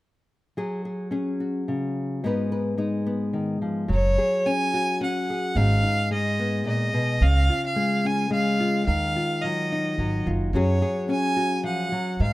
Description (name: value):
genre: acoustic folk duo or small band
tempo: 108 BPM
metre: 3/4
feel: straight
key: unclear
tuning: A4 = 437 Hz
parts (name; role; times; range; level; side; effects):
- nylon-string guitar; accompaniment; 0.6-12.3 s; G#2 to B4; -25 LUFS; left 1 dB; none
- warm fiddle; melody; 3.9-12.3 s; C#5 to G#5; -26 LUFS; right 1 dB; none
- upright bass; bass; 3.9-12.3 s; F#1 to G#2; -22 LUFS; right 1 dB; none
room: light reverb, small room ambience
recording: rough home demo mix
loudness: -22 LUFS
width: side -18 dB against mid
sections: 0.6-3.9 A section; 3.9-12.3 B section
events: none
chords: 0.6 F#sus2; 2.2 G#m; 3.9 F#sus2; 5.6 G#m; 7.2 C#; 8.9 D#madd9; 10.5 F#sus2